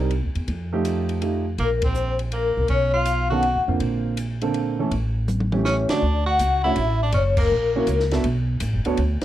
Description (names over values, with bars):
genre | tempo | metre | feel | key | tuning
jazz, small-group swing and bop | 162 BPM | 3/4 | swing 66% on 8ths | D major from 6.0 s | A4 = 439 Hz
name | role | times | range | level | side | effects
warm upright piano | accompaniment | 0.0-9.2 s | D3 to E5 | -25 LUFS | right 4 dB | none
upright bass | bass | 0.0-9.2 s | D1 to F2 | -24 LUFS | equal | none
compact cocktail drum kit | drums | 0.1-9.2 s | crash cymbal, hi-hat, kick drum, ride cymbal, snare drum, toms | -31 LUFS | equal | none
vibraphone with medium mallets | melody | 1.6-3.7, 5.7-8.1 s | Bb4 to F#5 | -23 LUFS | left 4 dB | none
bright tenor saxophone | second line | 1.6-3.6, 5.7-8.1 s | Bb3 to F#4 | -27 LUFS | right 3 dB | none
room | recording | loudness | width
light reverb | none | -20 LUFS | side -13 dB against mid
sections
0.0-6.0 A section; 6.0-9.2 B section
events
band accent 1.8, 5.8, 7.3; drum fill 5.3-6.0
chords
0.5 F9; 1.6 Bbsus2; 2.7 Badd9; 3.8 Bbmaj9; 4.9 A7; 6.0 Dmaj7; 7.1 F#7; 8.2 Bm7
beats
0.11 | 0.48 0.85 1.22 | 1.59 1.96 2.33 | 2.70 3.07 3.44 | 3.81 4.17 4.54 | 4.91 5.28 5.65 | 6.02 6.39 6.76 | 7.13 7.50 7.87 | 8.24 8.61 8.97